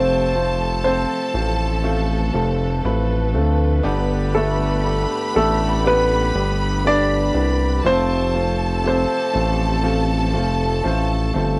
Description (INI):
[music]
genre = pop ballad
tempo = 60 BPM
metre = 4/4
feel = straight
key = unclear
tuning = A4 = 440 Hz
[part]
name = clear baby grand piano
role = melody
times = 0.0-9.8 s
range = A3 to D5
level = -23 LUFS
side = equal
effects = cassette tape
[part]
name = clear studio violin section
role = second line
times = 0.0-11.6 s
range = A5 to B5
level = -30 LUFS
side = equal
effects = cassette tape, plate reverb
[part]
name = warm grand piano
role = accompaniment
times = 0.0-11.6 s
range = G2 to A5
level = -27 LUFS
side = equal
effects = cassette tape
[part]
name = warm studio string section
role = sustained chords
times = 0.0-11.6 s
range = C3 to B4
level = -32 LUFS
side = equal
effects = cassette tape
[part]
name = round analog bass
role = bass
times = 0.0-11.6 s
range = F1 to D2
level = -23 LUFS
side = equal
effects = none
[sound]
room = moderate small room reverb, RT60 0.5 s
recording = home recording on cassette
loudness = -20 LUFS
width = mono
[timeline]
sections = 0.0-11.6 A section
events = grand piano fill 10.3-11.6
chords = 0.0 F; 3.8 Gadd9; 7.8 F